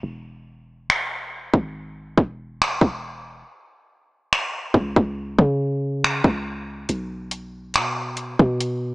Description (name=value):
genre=contemporary R&B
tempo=70 BPM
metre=4/4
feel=straight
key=unclear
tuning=A4 = 440 Hz
part: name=soft 808-style bass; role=bass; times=0.0-8.9 s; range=E1 to C#3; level=-24 LUFS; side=equal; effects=none
part: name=trap drum kit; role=drums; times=0.9-8.8 s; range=finger snaps, hi-hat, kick drum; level=-20 LUFS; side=equal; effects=none
room=moderate plate reverb, RT60 2.6 s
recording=dreamy mix soaked in reverb, small speaker sound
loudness=-20 LUFS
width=side -22 dB against mid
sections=0.0-8.9 A section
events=break 3.5-4.3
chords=none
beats=| 0.03 0.89 1.75 2.60 | 3.46 4.32 5.17 6.03 | 6.89 7.75 8.60